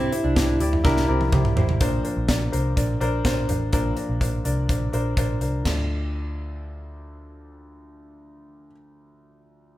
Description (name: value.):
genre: piano-driven pop.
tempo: 125 BPM.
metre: 4/4.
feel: straight.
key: D minor.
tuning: A4 = 438 Hz.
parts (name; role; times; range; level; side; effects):
direct-recorded clean electric guitar; melody; 0.0-1.3 s; E4; -27 LUFS; equal; spring reverb.
warm concert grand piano; accompaniment; 0.0-9.8 s; D2 to D5; -28 LUFS; left 1 dB; none.
fingerpicked plugged-in steel-string acoustic guitar; riff; 0.0-1.2 s; C4 to D4; -28 LUFS; right 3 dB; none.
vintage muted picked electric bass; bass; 0.0-8.7 s; A1 to D2; -25 LUFS; equal; none.
modern studio drum kit; drums; 0.1-5.8 s; crash cymbal, hi-hat, kick drum, snare drum, toms; -24 LUFS; equal; none.
room: light reverb.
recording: band playing live in one room.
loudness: -20 LUFS.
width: side -15 dB against mid.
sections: 0.0-1.8 A section; 1.8-5.7 B section; 5.7-9.5 C section.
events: drum fill 0.8-1.8.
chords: 0.0 C; 1.8 Bbadd9; 5.7 Dm.